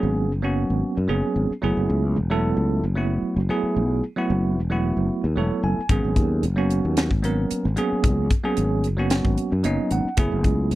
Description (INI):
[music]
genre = electric jazz fusion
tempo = 112 BPM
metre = 4/4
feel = straight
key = unclear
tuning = A4 = 444 Hz
[part]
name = bell-like tine electric piano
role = accompaniment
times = 0.0-10.7 s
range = F#3 to G#5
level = -24 LUFS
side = right 2 dB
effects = fast stereo tremolo
[part]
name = sustaining fretless electric bass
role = bass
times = 0.0-10.8 s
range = E1 to F#2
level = -23 LUFS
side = left 1 dB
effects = none
[part]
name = crisp fusion drum kit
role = drums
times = 5.9-10.8 s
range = hi-hat, kick drum, snare drum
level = -22 LUFS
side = left 1 dB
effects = none
[sound]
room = little or no reverb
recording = dry, close 1970s-style studio recording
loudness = -20 LUFS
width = side -16 dB against mid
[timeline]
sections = 0.0-10.8 A section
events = tine electric piano fill 5.1-5.9, 9.4-10.2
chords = 0.0 G#m11; 1.6 F#m11; 5.9 G#m11; 10.2 F#m11